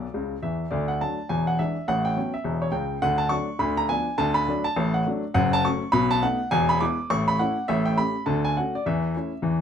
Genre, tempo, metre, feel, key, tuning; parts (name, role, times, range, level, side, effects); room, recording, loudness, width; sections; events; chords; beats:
jazz, stride piano; 206 BPM; 4/4; swing 62% on 8ths; D major, A major from 5.4 s; A4 = 439 Hz
warm baby grand piano; solo; 0.0-9.6 s; E1 to D6; -22 LUFS; equal
moderate club reverb, RT60 0.5 s; -22 LUFS; side -8 dB against mid
0.7-9.6 A section
grand piano fill 0.0-0.7
0.0 D; 1.3 E7; 1.9 A13; 3.0 D; 3.6 Ddim7; 4.2 D; 5.4 F#m; 5.9 B7; 6.5 E7; 7.1 A; 7.7 A7; 8.3 Dmaj7; 8.8 A/E
0.12 0.41 | 0.70 0.99 1.28 1.58 | 1.87 2.16 2.45 2.74 | 3.03 3.32 3.62 3.91 | 4.20 4.49 4.78 5.07 | 5.36 5.65 5.94 6.23 | 6.52 6.81 7.10 7.39 | 7.68 7.97 8.26 8.55 | 8.84 9.13 9.42